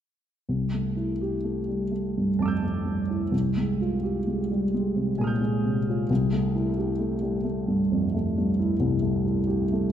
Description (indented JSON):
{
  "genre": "classical, impressionist solo piano",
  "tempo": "65 BPM",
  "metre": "3/4",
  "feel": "rubato",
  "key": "C major",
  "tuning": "A4 = 440 Hz",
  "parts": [
    { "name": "warm baby grand piano", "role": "solo", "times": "0.5-9.9 s", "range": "C2 to G6", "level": "-23 LUFS", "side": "equal", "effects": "none" }
  ],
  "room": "wet concert hall reverb, RT60 2.4 s",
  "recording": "minimal, uncompressed stereo recording",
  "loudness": "-23 LUFS",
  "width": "side -9 dB against mid",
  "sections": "0.5-9.9 A section",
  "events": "none",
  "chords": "0.5 C69; 3.3 Fm9/C; 6.1 C6",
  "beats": "| 0.48 1.45 2.38 | 3.33 4.27 5.18 | 6.10 7.00 7.90 | 8.80 9.73"
}